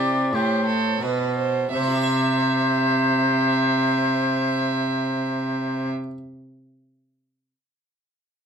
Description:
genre	classical, baroque-style sonata movement with continuo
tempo	81 BPM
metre	3/4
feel	straight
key	C major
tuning	A4 = 444 Hz
part	warm oboe	melody	0.0-5.9 s	C5 to D5	-25 LUFS	left 6 dB	none
part	warm violin	second line	0.0-5.9 s	G4 to E5	-26 LUFS	right 8 dB	none
part	harpsichord	accompaniment	0.0-6.2 s	A2 to E5	-32 LUFS	left 2 dB	none
part	rich cello	bass	0.0-5.9 s	A2 to C3	-23 LUFS	right 1 dB	none
room	light reverb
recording	minimal, uncompressed stereo recording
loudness	-20 LUFS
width	side -7 dB against mid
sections	0.0-1.7 A section; 1.7-6.2 B section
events	slowing down 0.0-1.7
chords	0.0 C

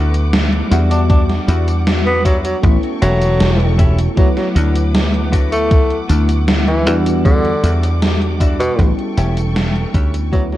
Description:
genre	vaporwave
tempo	78 BPM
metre	4/4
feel	straight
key	D major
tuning	A4 = 443 Hz
part	FM electric piano with soft pad layer	accompaniment	0.0-10.6 s	F#3 to F#4	-22 LUFS	left 1 dB	wide subtle chorus, vintage 12-bit sampler grit
part	bright studio string section	sustained chords	0.0-10.6 s	G3 to D6	-30 LUFS	left 1 dB	none
part	clean electric guitar	riff	0.0-10.1 s	G3 to G4	-27 LUFS	left 3 dB	lush chorus, analog delay
part	dry thumbed slap bass	bass	0.0-10.6 s	E1 to E2	-16 LUFS	equal	none
part	gated 80s digital drum machine	drums	0.1-10.6 s	hi-hat, snare drum, tambourine	-20 LUFS	equal	gated reverb, gated reverb snare, studio reverb
part	breathy tenor saxophone	melody	0.9-10.6 s	B2 to D4	-20 LUFS	equal	vintage 12-bit sampler grit, tape echo
part	electronic kick drum	drums	1.1-10.5 s	none	-13 LUFS	equal	studio reverb
room	light reverb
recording	cassette tape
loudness	-12 LUFS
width	side -14 dB against mid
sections	0.0-10.6 A section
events	fade-out 8.3-10.6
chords	0.0 D6; 0.7 Em9; 2.6 A7; 4.2 D6; 6.9 Em9; 8.8 A7

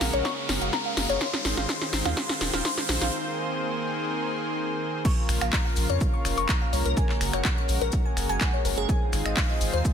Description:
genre	progressive house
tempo	125 BPM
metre	4/4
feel	straight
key	Bb minor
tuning	A4 = 440 Hz
part	lush unison pad	sustained chords	0.0-9.9 s	Db3 to C5	-30 LUFS	equal	chorus, sidechain pumping
part	saturated sub bass	bass	0.0-9.8 s	Eb1 to F2	-29 LUFS	equal	sidechain pumping
part	house drum kit	drums	0.0-9.9 s	crash cymbal, finger snaps, handclaps, hi-hat, snare drum	-29 LUFS	equal	studio ambience
part	riser	sound effects	0.0-3.1 s	none	-31 LUFS	equal	none
part	glassy wavetable pluck	arpeggios	0.1-9.8 s	Ab4 to Db6	-31 LUFS	left 3 dB	chorus, sidechain pumping, dub echo
part	electronic kick drum	drums	0.2-9.9 s	none	-26 LUFS	equal	high-pass filter on kick, studio ambience
part	swinging big-band drum kit	drums	5.1-9.9 s	hi-hat, shaker, snare drum	-39 LUFS	left 4 dB	sidechain pumping on hats, high-pass filter on hats, studio ambience, high-pass filter on snare, sidechain pumping on perc, high-pass filter on perc, high-pass filter on room
room	light reverb, small room ambience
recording	none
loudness	-23 LUFS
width	side -8 dB against mid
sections	0.0-5.0 A section; 5.0-9.9 B section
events	build-up 0.0-5.0; drum fill 0.0-3.1; riser 0.0-3.1; break 3.1-5.0; drop 5.0-9.9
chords	0.0 Gbadd9; 1.2 Fm7/Ab; 3.1 Abadd9; 5.0 Bbm; 7.0 Gbadd9; 8.9 Fm7/Ab

